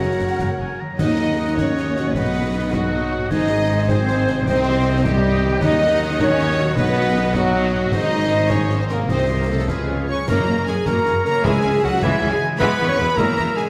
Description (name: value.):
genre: cinematic, heroic adventure film score.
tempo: 104 BPM (dotted quarters).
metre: 6/8.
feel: straight.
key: Eb minor, F# mixolydian from 10.3 s.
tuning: A4 = 440 Hz.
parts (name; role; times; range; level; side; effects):
rich symphonic violin section; melody; 0.0-13.7 s; F#4 to Db6; -33 LUFS; equal; none.
clear oboe; second line; 0.0-13.7 s; C#5 to A#5; -32 LUFS; equal; none.
clear symphonic violin section; second line; 0.0-13.7 s; F#4 to Db6; -33 LUFS; equal; none.
small flute group; second line; 0.0-13.7 s; F#4 to C#6; -31 LUFS; equal; none.
warm clarinet; second line; 0.0-13.7 s; E4 to D#5; -30 LUFS; equal; none.
rich studio viola section; accompaniment; 0.0-13.5 s; C#3 to Gb5; -32 LUFS; equal; none.
warm French horn section; sustained chords; 0.0-13.7 s; F#3 to Db5; -24 LUFS; equal; none.
concert harp; arpeggios; 0.0-13.7 s; F#2 to E4; -34 LUFS; equal; none.
rich symphonic double bass section; bass; 0.0-13.5 s; F#1 to F#2; -29 LUFS; equal; none.
warm symphonic cello section; bass; 0.0-13.7 s; Eb2 to Db4; -29 LUFS; equal; none.
timpani; percussion; 0.0-1.5, 5.6-6.2, 10.3-12.0 s; F#2 to Eb3; -31 LUFS; equal; none.
concert snare drum, concert bass drum and clash cymbals; drums; 0.4-13.7 s; none; -30 LUFS; equal; none.
mellow tuba; bass; 1.0-13.5 s; E1 to Eb2; -29 LUFS; equal; none.
room: wet concert hall reverb, RT60 2.1 s.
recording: none.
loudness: -19 LUFS.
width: mono.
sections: 1.0-10.3 A section; 10.3-13.7 B section.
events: none.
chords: 0.0 F#; 1.0 Ebm; 2.2 B; 3.3 Ab; 4.5 Cm; 5.6 Ebm; 6.8 B; 7.9 Ab; 9.1 Cm; 9.7 Db7; 10.3 F#; 11.4 C#m; 12.6 E.